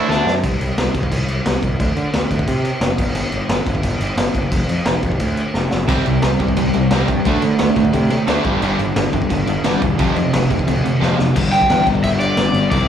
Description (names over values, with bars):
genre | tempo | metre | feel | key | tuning
punk rock | 176 BPM | 4/4 | straight | unclear | A4 = 439 Hz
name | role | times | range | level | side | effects
crunchy overdriven guitar | melody | 0.0-0.3, 11.5-12.9 s | D4 to G5 | -18 LUFS | equal | slapback echo
crunchy overdriven guitar | riff | 0.0-0.3, 5.9-12.9 s | F2 to D4 | -20 LUFS | left 9 dB | none
distorted electric guitar | riff | 0.0-0.3, 5.9-11.3 s | F2 to D4 | -20 LUFS | right 10 dB | overdrive, slapback echo
fuzz picked electric bass | bass | 0.0-12.9 s | E1 to D3 | -20 LUFS | equal | overdrive
raw garage drum kit | drums | 0.1-12.8 s | crash cymbal, kick drum, snare drum, splash cymbal | -20 LUFS | equal | none
room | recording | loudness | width
little or no reverb | live gig heard through the venue's PA, club reverb | -15 LUFS | side -9 dB against mid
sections
0.4-11.4 A section; 11.4-12.9 B section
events
drum fill 0.1-0.4, 5.5-5.9, 11.0-11.4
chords
0.4 N.C.; 4.5 Dm/F; 5.9 C5; 7.3 D5; 8.4 G5; 10.0 F5; 11.4 G5